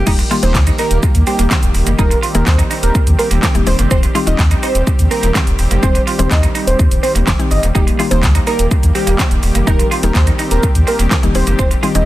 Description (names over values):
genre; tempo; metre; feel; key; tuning
dance-pop; 125 BPM; 4/4; straight; unclear; A4 = 441 Hz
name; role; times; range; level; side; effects
warm analog pad; sustained chords; 0.0-12.1 s; Eb3 to G4; -23 LUFS; right 1 dB; chorus, tremolo, sidechain pumping
electric guitar at the edge of break-up; riff; 0.0-11.9 s; Bb3 to F4; -23 LUFS; right 4 dB; lush chorus
sub bass with octave; bass; 0.0-12.0 s; Eb1 to Eb2; -14 LUFS; equal; sidechain pumping
wide unison lead; melody; 0.1-12.0 s; G4 to Eb5; -20 LUFS; right 2 dB; sidechain pumping, digital delay
mallet-like synth pluck; accompaniment; 0.1-12.1 s; Eb3 to G4; -20 LUFS; left 4 dB; chorus, sidechain pumping
pop drum kit; drums; 0.1-12.1 s; crash cymbal, handclaps, hi-hat, kick drum, shaker, snare drum; -15 LUFS; equal; none
room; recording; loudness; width
digital ambience; dense, heavily limited modern master; -11 LUFS; side -15 dB against mid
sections
0.1-12.1 A section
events
drop 0.1-12.1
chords
0.1 Eb